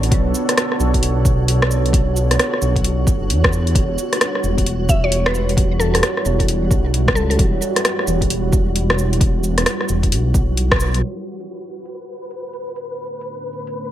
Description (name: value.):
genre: future garage.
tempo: 132 BPM.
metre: 4/4.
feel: swing 63% on 16ths.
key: E dorian.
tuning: A4 = 442 Hz.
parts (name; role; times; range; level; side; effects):
deep dark ambient pad; sustained chords; 0.0-13.9 s; G3 to C#5; -24 LUFS; right 2 dB; chorus, built-in reverb, sidechain pumping.
dark detuned saw bass; bass; 0.0-11.0 s; E1 to E2; -18 LUFS; equal; tube saturation, sidechain pumping.
deep house drum kit; drums; 0.0-13.7 s; cabasa, hi-hat, rim click; -20 LUFS; equal; low-pass filter on hats, low-pass filter on snare, low-pass filter on perc, low-pass filter on room.
flickering grainy texture; texture; 0.0-13.9 s; F#4 to B4; -30 LUFS; equal; built-in reverb.
electronic kick drum; drums; 0.1-10.8 s; none; -18 LUFS; equal; none.
mallet-like synth pluck; melody; 4.9-7.4 s; A4 to E5; -24 LUFS; left 1 dB; chorus, vintage 12-bit sampler grit, digital delay.
room: light reverb.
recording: low-pass filter.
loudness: -15 LUFS.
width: side -12 dB against mid.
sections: 0.0-11.0 A section; 11.0-13.9 B section.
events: band accent 10.7; filter sweep on drum 11.0-13.9; filter sweep on ambient pad 11.0-13.9; filter sweep 11.0-13.9.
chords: 0.0 Bm9; 3.8 Em69; 11.0 Bm9.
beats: | 0.12 0.57 1.03 1.48 | 1.94 2.39 2.85 3.30 | 3.75 4.21 4.66 5.12 | 5.57 6.03 6.48 6.94 | 7.39 7.85 8.30 8.76 | 9.21 9.66 10.12 10.57 | 11.03 11.48 11.94 12.39 | 12.85 13.30 13.76.